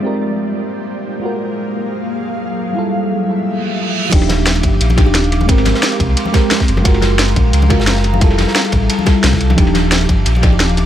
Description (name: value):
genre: liquid drum and bass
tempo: 176 BPM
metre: 4/4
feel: swing 54% on 16ths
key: Eb major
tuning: A4 = 440 Hz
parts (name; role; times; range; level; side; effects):
- mellow FM electric piano; accompaniment; 0.0-10.9 s; F3 to Bb4; -18 LUFS; right 1 dB; chorus, phaser, dub echo
- ethereal airy pad; sustained chords; 0.0-10.9 s; F3 to D6; -22 LUFS; equal; ensemble chorus, built-in reverb, sidechain pumping
- reverse cymbal; sound effects; 3.6-4.1 s; none; -22 LUFS; right 7 dB; none
- sub bass with octave; bass; 4.1-10.9 s; Eb1 to Db2; -15 LUFS; equal; none
- crunchy breakbeat drum kit; drums; 4.1-10.9 s; ride cymbal, snare drum; -23 LUFS; equal; high-pass filter on cymbals, high-pass filter on snare, high-pass filter on room, dub echo
- drum and bass drum kit; drums; 4.1-10.8 s; crash cymbal, hi-hat, snare drum; -19 LUFS; equal; low-pass filter on hats, low-pass filter on cymbals, low-pass filter on snare, dub echo
- electronic kick drum; drums; 4.1-10.5 s; none; -13 LUFS; equal; none
- congas and bongos; percussion; 4.3-10.7 s; none; -25 LUFS; left 4 dB; none
room: light reverb, studio reverb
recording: echo-heavy mix, low-pass filter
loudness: -12 LUFS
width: side -11 dB against mid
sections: 0.0-4.1 A section; 4.1-10.9 B section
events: filter sweep 0.0-4.1; reverse cymbal 3.6-4.1; drop 4.1-10.9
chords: 0.0 Abmaj9; 1.2 Gbmaj9; 2.8 Fmaj9; 4.1 Ebmaj9; 5.5 Abmaj9; 6.7 Gbmaj9; 8.2 Fmaj9; 9.6 Ebmaj9